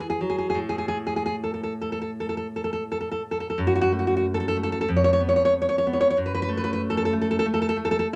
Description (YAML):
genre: romantic piece for solo classical guitar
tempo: 76-98 BPM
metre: 4/4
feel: rubato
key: F# minor from 3.6 s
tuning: A4 = 443 Hz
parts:
  - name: nylon-string guitar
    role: solo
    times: 0.0-8.2 s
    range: E#2 to C#5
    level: -25 LUFS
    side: equal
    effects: none
room: moderate small room reverb, RT60 0.5 s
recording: none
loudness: -25 LUFS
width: mono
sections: 0.0-3.6 A section; 3.6-8.2 B section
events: none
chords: 0.0 N.C.; 3.6 F#m; 4.9 C#7/E#; 6.2 F#m